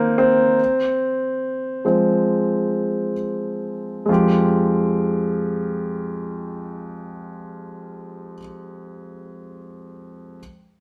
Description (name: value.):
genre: pop.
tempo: free time.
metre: none.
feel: none.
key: F minor.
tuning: A4 = 439 Hz.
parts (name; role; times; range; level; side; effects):
clear concert grand piano; accompaniment; 0.0-10.4 s; F2 to G4; -22 LUFS; equal; none.
room: moderate stone room reverb, RT60 1.0 s.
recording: band playing live in one room.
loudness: -21 LUFS.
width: mono.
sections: 0.0-4.1 A section; 4.1-7.9 B section.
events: slowing down 0.0-4.1; grand piano solo 0.0-4.1.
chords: 0.0 Ebsus2; 0.6 Fm; 4.1 Fmadd9.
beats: free time.